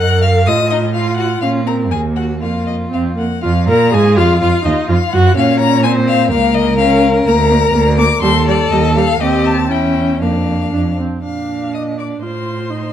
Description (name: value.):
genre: quick classical-period movement for string quartet.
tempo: 115-127 BPM.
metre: 2/4.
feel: rubato.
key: Bb minor, Bb major from 7.3 s.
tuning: A4 = 440 Hz.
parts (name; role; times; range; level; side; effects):
rich violin; melody; 0.0-12.9 s; D5 to Gb6; -19 LUFS; left 9 dB; none.
rich violin; second line; 0.0-12.9 s; D4 to Gb5; -20 LUFS; left 2 dB; none.
warm viola; accompaniment; 0.0-12.9 s; G3 to Bb4; -17 LUFS; equal; none.
rich cello; bass; 0.0-12.9 s; Db2 to Bb2; -16 LUFS; right 3 dB; none.
room: moderate large studio reverb, RT60 1.2 s.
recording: dark, warm production.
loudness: -12 LUFS.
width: side -10 dB against mid.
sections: 0.0-3.4 A section; 3.4-11.2 B section; 11.2-12.9 C section.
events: none.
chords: 0.5 F/A; 1.4 Bbm; 1.9 Ebm; 2.4 Fsus4; 2.9 F5; 3.4 Bb5/F; 4.4 Ebmadd9; 5.4 Bbm; 6.3 Bbm/Db; 7.3 Bb/D; 8.2 Eb; 9.2 Cm/Eb; 9.7 Em6; 10.2 Bb/F; 10.7 F5; 11.2 Bb; 12.2 F/A.